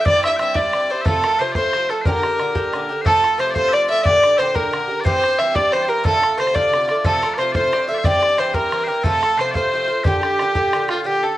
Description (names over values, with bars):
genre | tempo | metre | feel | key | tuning
celtic folk, Celtic jig | 120 BPM (dotted quarters) | 6/8 | straight | unclear | A4 = 440 Hz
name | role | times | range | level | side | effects
dark fiddle | melody | 0.0-11.4 s | F4 to E5 | -18 LUFS | equal | cassette tape
bowl-back mandolin | second line | 0.0-10.9 s | G4 to E5 | -32 LUFS | right 2 dB | none
loud bright bagpipes | second line | 0.0-11.4 s | F4 to G5 | -25 LUFS | left 3 dB | none
Irish bouzouki | accompaniment | 0.0-11.4 s | G2 to G4 | -26 LUFS | right 3 dB | plate reverb
bodhran | percussion | 0.1-11.0 s | none | -23 LUFS | equal | none
room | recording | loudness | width
moderate studio reverb, RT60 0.5 s | home recording on cassette | -16 LUFS | side -14 dB against mid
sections
0.0-3.1 A section; 3.1-11.1 A section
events
none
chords
0.1 C; 1.1 F; 2.1 Gm; 3.1 F; 4.1 Gm; 5.1 C; 6.1 F6; 7.1 F; 8.1 C; 9.1 F; 10.1 Gm